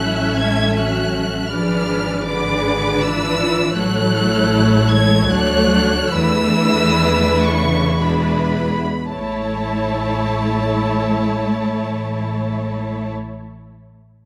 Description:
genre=classical, slow romantic movement for string orchestra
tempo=52-83 BPM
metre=3/4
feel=rubato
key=A major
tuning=A4 = 440 Hz
part: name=warm studio violin section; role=melody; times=0.0-13.1 s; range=A5 to G#6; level=-26 LUFS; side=equal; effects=none
part: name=warm studio violin section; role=second line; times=0.0-13.1 s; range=E4 to E5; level=-25 LUFS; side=equal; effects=none
part: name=warm studio viola section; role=accompaniment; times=0.0-13.1 s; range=G#3 to G#4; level=-24 LUFS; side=equal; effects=none
part: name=warm studio cello section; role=bass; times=0.0-13.1 s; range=B2 to A3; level=-25 LUFS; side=equal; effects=none
part: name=warm studio double bass section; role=bass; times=0.0-13.1 s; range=G#1 to E2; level=-24 LUFS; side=equal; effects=none
room=moderate scoring stage reverb, RT60 1.9 s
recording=none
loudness=-18 LUFS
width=mono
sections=0.0-9.1 A section; 9.1-12.3 B section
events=slowing down 2.7-9.1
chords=0.0 A; 1.5 G#dim7; 3.8 A; 5.3 Dmaj7; 6.1 E7sus4; 8.0 E7; 9.1 A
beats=0.02 0.78 | 1.54 2.29 3.03 | 3.76 4.52 5.31 | 6.12 7.01 8.01 | 9.12 10.20 11.27

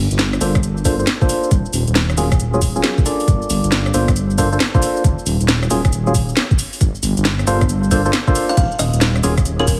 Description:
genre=UK garage, two-step garage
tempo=136 BPM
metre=4/4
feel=swing 64% on 16ths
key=G minor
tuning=A4 = 440 Hz
part: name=dark detuned saw bass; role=bass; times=0.0-9.8 s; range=Eb1 to G1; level=-21 LUFS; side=equal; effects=none
part: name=garage drum kit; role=drums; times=0.1-9.8 s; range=hi-hat, rim click, shaker, snare drum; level=-23 LUFS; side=equal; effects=none
part: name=percussive organ stab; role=stabs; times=0.4-9.7 s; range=Gb3 to D5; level=-23 LUFS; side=equal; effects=chorus, digital delay
part: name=electronic kick drum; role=drums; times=0.6-9.8 s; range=none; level=-18 LUFS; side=equal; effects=none
part: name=buzzing kalimba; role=melody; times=8.5-9.8 s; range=Bb4 to F5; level=-25 LUFS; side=equal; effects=none
room=light reverb, digital ambience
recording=heavily compressed radio sound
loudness=-17 LUFS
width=mono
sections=0.0-9.8 A section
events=filter sweep on synth stab 0.0-9.8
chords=0.0 Gm11; 1.5 Ebm11; 3.3 Gm11; 5.0 Ebm11; 6.8 Gm11; 8.6 Ebm11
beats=0.19 0.63 1.07 | 1.51 1.96 2.40 2.84 | 3.28 3.72 4.16 4.60 | 5.04 5.48 5.93 6.37 | 6.81 7.25 7.69 8.13 | 8.57 9.01 9.46

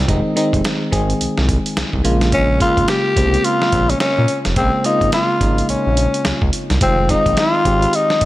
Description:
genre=R&B, new jack swing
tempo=107 BPM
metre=4/4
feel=swing 61% on 16ths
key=unclear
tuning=A4 = 439 Hz
part: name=FM electric piano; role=accompaniment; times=0.0-8.3 s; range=Db3 to Ab4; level=-20 LUFS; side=equal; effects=chorus
part: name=smooth synth bass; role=bass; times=0.0-8.3 s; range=F1 to Bb2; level=-18 LUFS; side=equal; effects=none
part: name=dusty soul sampler-style drum kit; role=drums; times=0.1-8.3 s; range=hi-hat, kick drum, snare drum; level=-21 LUFS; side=equal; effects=none
part: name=growling tenor saxophone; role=melody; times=2.3-8.3 s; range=C4 to G4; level=-17 LUFS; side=left 1 dB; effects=none
room=light reverb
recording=none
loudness=-14 LUFS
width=side -16 dB against mid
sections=0.0-8.3 A section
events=none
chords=0.0 Fm7; 2.0 Bbm7; 6.8 Fm7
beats=| 0.08 0.64 1.21 1.76 | 2.33 2.89 3.45 4.01 | 4.57 5.13 5.69 6.25 | 6.81 7.37 7.93

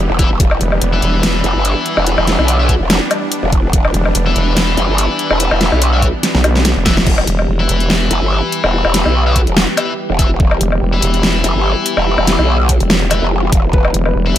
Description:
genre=heavy wobble dubstep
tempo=144 BPM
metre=4/4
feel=swing 55% on 16ths, half-time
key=E minor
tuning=A4 = 440 Hz
part: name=supersaw pad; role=sustained chords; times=0.0-14.4 s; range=E3 to G4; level=-21 LUFS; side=equal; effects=sidechain pumping, low-pass filter
part: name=vowel-sweep wobble bass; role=bass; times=0.0-1.4, 3.9-8.1, 10.6-14.4 s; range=E1 to B1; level=-15 LUFS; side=equal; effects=chorus, overdrive
part: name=growl bass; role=bass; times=0.1-13.9 s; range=E1 to B1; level=-15 LUFS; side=equal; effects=chorus, overdrive
part: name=distorted electric guitar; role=stabs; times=0.2-14.4 s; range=E4 to E5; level=-20 LUFS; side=left 4 dB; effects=overdrive, ping-pong delay
part: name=dubstep drum kit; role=drums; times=0.2-14.4 s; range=crash cymbal, hi-hat, snare drum, woodblock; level=-16 LUFS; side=left 1 dB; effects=none
part: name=electronic kick drum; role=drums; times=0.2-13.8 s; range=none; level=-14 LUFS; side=equal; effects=overdrive
part: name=dark grand piano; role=melody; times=13.7-14.2 s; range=B4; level=-22 LUFS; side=left 5 dB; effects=none
room=light reverb, digital ambience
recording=none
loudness=-11 LUFS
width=side -12 dB against mid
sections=0.0-7.1 A section; 7.1-14.4 A section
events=drop 0.0-7.1, 7.1-14.4; drum fill 6.2-7.1; band accent 7.0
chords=0.0 Em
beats=| 0.40 0.82 1.23 1.65 | 2.07 2.48 2.90 3.32 | 3.73 4.15 4.57 4.98 | 5.40 5.82 6.23 6.65 | 7.07 7.48 7.90 8.32 | 8.73 9.15 9.57 9.98 | 10.40 10.82 11.23 11.65 | 12.07 12.48 12.90 13.32 | 13.73 14.15

